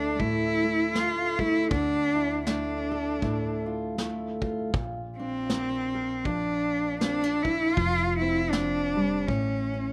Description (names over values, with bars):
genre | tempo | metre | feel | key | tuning
acoustic folk duo or small band | 79 BPM | 4/4 | swing 58% on 8ths | D minor | A4 = 440 Hz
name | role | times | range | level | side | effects
clear cello | melody | 0.0-9.9 s | C4 to F4 | -29 LUFS | equal | none
fingerpicked steel-string acoustic guitar | accompaniment | 0.0-9.9 s | A2 to Bb4 | -34 LUFS | equal | none
upright bass | bass | 0.0-9.9 s | F1 to D2 | -40 LUFS | equal | none
soft brush drum kit | drums | 0.2-9.5 s | kick drum, snare drum | -34 LUFS | equal | none
room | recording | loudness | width
little or no reverb | none | -27 LUFS | mono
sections
0.0-9.9 A section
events
none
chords
0.0 Dmadd9; 4.7 Bb; 7.8 F5; 9.3 A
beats
0.20 0.96 | 1.71 2.47 3.23 3.98 | 4.74 5.50 6.26 7.01 | 7.77 8.53 9.28